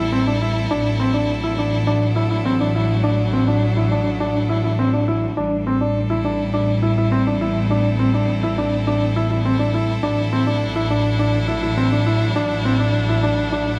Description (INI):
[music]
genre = piano and strings electronica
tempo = 103 BPM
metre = 4/4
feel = straight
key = unclear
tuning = A4 = 441 Hz
[part]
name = clear string quartet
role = sustained chords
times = 0.0-13.8 s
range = F#3 to A4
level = -27 LUFS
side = equal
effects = none
[part]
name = dark upright piano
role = riff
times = 0.0-13.7 s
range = C4 to E4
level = -23 LUFS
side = equal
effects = delay
[part]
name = dark studio double bass section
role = bass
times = 0.0-13.8 s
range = A1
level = -23 LUFS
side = equal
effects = none
[sound]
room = moderate recital hall reverb, RT60 1.6 s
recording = none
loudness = -19 LUFS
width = mono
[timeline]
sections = 0.0-13.8 A section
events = none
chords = 0.0 Am7; 0.7 Dadd9/A; 5.4 Am7; 10.0 Dadd9/A